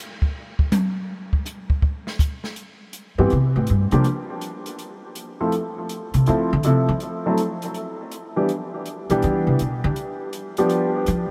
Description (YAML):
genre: jazz piano trio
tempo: 162 BPM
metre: 4/4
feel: swing 66% on 8ths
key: C major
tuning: A4 = 440 Hz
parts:
  - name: open jazz drum kit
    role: drums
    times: 0.2-11.2 s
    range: hi-hat, kick drum, snare drum, toms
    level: -26 LUFS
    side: equal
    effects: none
  - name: warm baby grand piano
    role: melody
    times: 3.2-11.1 s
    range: E3 to A4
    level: -25 LUFS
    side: equal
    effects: subtle chorus, delay
  - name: upright bass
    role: bass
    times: 3.2-11.3 s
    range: G2 to F3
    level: -22 LUFS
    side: equal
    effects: none
room: moderate huge ambient reverb, RT60 8.0 s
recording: dreamy mix soaked in reverb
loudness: -22 LUFS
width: mono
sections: 0.0-2.6 A section; 2.6-11.3 A section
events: drum solo 0.0-2.6; upright bass solo 2.6-11.3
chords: 0.0 N.C.; 2.6 C5; 4.0 N.C.; 4.8 Fmaj7; 7.0 N.C.; 7.8 Em7; 10.0 N.C.; 10.7 G7